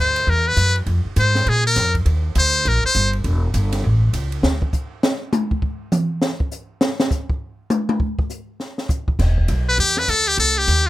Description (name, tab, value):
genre	jazz, small-group swing and bop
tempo	202 BPM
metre	4/4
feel	swing 62% on 8ths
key	unclear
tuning	A4 = 440 Hz
part	trumpet with metal mute	melody	0.0-3.1, 9.7-10.9 s	G4 to C5	-17 LUFS	left 1 dB	none
part	upright bass	bass	0.0-4.6, 9.1-10.9 s	E1 to Bb2	-18 LUFS	equal	none
part	open jazz drum kit	drums	0.2-10.8 s	crash cymbal, hi-hat, kick drum, ride cymbal, snare drum, toms	-22 LUFS	equal	none
room	little or no reverb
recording	none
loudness	-17 LUFS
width	side -16 dB against mid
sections	0.0-9.2 A section; 9.2-10.9 B section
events	muted trumpet solo 0.0-9.2; drum solo 4.4-9.2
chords	0.0 Cmaj9; 0.9 Fm; 1.5 Bb5; 2.1 Ebmaj7; 3.2 Em; 3.8 A; 4.4 N.C.; 9.2 E5; 10.4 Cm